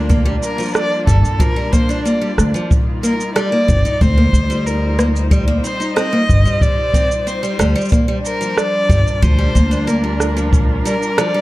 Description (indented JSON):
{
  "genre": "folktronica",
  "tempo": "92 BPM",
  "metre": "4/4",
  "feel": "straight",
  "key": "G minor",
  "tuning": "A4 = 440 Hz",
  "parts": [
    { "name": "clear string quartet", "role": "sustained chords", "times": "0.0-11.4 s", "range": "G3 to C5", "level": "-25 LUFS", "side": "equal", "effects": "none" },
    { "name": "picked steel-string acoustic guitar", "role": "arpeggios", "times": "0.0-11.4 s", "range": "F3 to Eb4", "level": "-21 LUFS", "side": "equal", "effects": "digital delay" },
    { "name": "upright bass", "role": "bass", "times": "0.0-10.8 s", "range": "G1 to D2", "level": "-16 LUFS", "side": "equal", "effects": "none" },
    { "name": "electronic shaker and rim click", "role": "drums", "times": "0.1-11.3 s", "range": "none", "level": "-22 LUFS", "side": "right 2 dB", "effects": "none" },
    { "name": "kick drum", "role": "drums", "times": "0.1-10.7 s", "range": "none", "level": "-16 LUFS", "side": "equal", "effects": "none" },
    { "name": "warm violin", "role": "melody", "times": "0.4-11.4 s", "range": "A4 to Eb5", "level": "-21 LUFS", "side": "equal", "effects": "digital delay" }
  ],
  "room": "small room ambience",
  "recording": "dark, warm production",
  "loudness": "-13 LUFS",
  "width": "side -18 dB against mid",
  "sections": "0.0-11.4 A section",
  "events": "none",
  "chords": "0.0 Gm7; 2.7 Eb6/G; 7.9 Gm7"
}